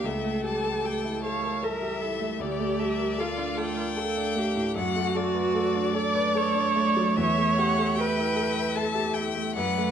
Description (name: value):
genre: classical, slow romantic movement for piano quintet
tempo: 76 BPM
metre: 3/4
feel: rubato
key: D minor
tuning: A4 = 436 Hz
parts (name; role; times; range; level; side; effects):
- rich violin; melody; 0.0-9.9 s; D5 to A5; -31 LUFS; left 9 dB; none
- clear violin; second line; 0.0-9.9 s; D5 to A5; -38 LUFS; left 3 dB; none
- warm cello; second line; 0.0-9.9 s; G3 to A3; -33 LUFS; right 6 dB; none
- bright concert grand piano; accompaniment; 0.0-9.9 s; C#2 to B4; -30 LUFS; left 1 dB; none
- warm viola; accompaniment; 0.0-9.9 s; F4 to D5; -28 LUFS; right 3 dB; none
room: moderate large studio reverb, RT60 0.8 s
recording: dark, warm production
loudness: -24 LUFS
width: side -8 dB against mid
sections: 0.0-9.9 A section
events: none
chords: 0.1 A7/C#; 2.4 Dm; 4.8 D/F#; 7.2 A7/E